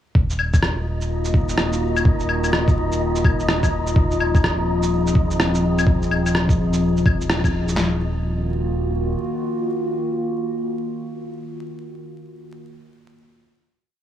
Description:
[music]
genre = future garage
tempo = 126 BPM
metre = 4/4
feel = swing 62% on 16ths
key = Eb dorian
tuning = A4 = 442 Hz
[part]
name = warbly tape-like pad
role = sustained chords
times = 0.1-12.3 s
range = Eb3 to Ab4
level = -23 LUFS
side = left 1 dB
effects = chorus, built-in reverb, vintage 12-bit sampler grit, sidechain pumping
[part]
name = warm sub bass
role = bass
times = 0.2-9.2 s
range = Eb1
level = -25 LUFS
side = equal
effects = sidechain pumping
[part]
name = lo-fi sampler-style drum kit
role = drums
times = 0.2-7.9 s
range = handclaps, kick drum, snare drum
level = -18 LUFS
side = equal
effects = vintage 12-bit sampler grit
[part]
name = wind-like tuned noise texture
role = texture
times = 0.7-7.8 s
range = Eb4 to Eb5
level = -29 LUFS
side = right 1 dB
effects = built-in reverb
[part]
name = electronic shaker, claves and rim click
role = drums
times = 0.3-7.8 s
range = none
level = -24 LUFS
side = left 1 dB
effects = vintage 12-bit sampler grit
[sound]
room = light reverb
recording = vinyl crackle, small room ambience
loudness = -18 LUFS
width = side -11 dB against mid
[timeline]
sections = 0.1-7.8 groove; 7.8-11.6 final chord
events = band accent 7.3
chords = 0.1 Ebm; 4.0 Fm/Eb; 7.8 Ebm

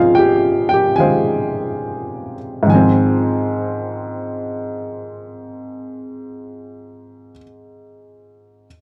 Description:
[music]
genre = solo jazz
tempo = 69-76 BPM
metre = 4/4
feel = swing 68% on 8ths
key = Ab major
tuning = A4 = 440 Hz
[part]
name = dark baby grand piano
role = solo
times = 0.0-8.7 s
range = Ab2 to Ab5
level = -18 LUFS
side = equal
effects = none
[sound]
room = light reverb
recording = dry, close 1970s-style studio recording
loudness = -17 LUFS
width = mono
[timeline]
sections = 0.0-2.7 A section; 2.7-6.2 B section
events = slowing down 0.0-2.7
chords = 0.0 Ab6

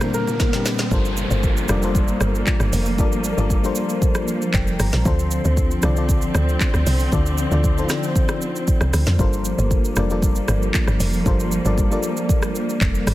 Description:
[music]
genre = amapiano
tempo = 116 BPM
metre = 4/4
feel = straight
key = G minor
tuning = A4 = 440 Hz
[part]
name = warm baby grand piano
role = melody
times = 0.0-0.6 s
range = Bb4 to C5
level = -28 LUFS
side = left 3 dB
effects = digital delay
[part]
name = FM electric piano with auto-pan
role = accompaniment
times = 0.0-13.1 s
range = Bb2 to Bb5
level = -25 LUFS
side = left 4 dB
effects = none
[part]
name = warm studio string section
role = sustained chords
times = 0.0-13.1 s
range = D3 to C4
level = -26 LUFS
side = right 2 dB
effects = none
[part]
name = afro-pop drum kit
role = drums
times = 0.0-13.1 s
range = handclaps, hi-hat, kick drum, rim click, shaker, snare drum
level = -21 LUFS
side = equal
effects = soft clipping on snare
[part]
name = bongos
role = percussion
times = 0.0-0.5 s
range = none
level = -31 LUFS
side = right 2 dB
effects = none
[part]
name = riser and downlifter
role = sound effects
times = 0.0-5.1 s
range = none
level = -30 LUFS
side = right 2 dB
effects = none
[part]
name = woody log drum bass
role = bass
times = 0.9-13.1 s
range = F1 to F2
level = -21 LUFS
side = equal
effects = none
[sound]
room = little or no reverb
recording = dense, heavily limited modern master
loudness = -17 LUFS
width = side -16 dB against mid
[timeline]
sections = 0.9-13.1 A section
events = riser 0.0-0.9; drum fill 0.4-0.9; drop 0.9-13.1; FM electric piano fill 4.3-5.1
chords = 0.0 Bb6; 0.9 Gm11; 5.1 Dm7; 9.2 Gm11

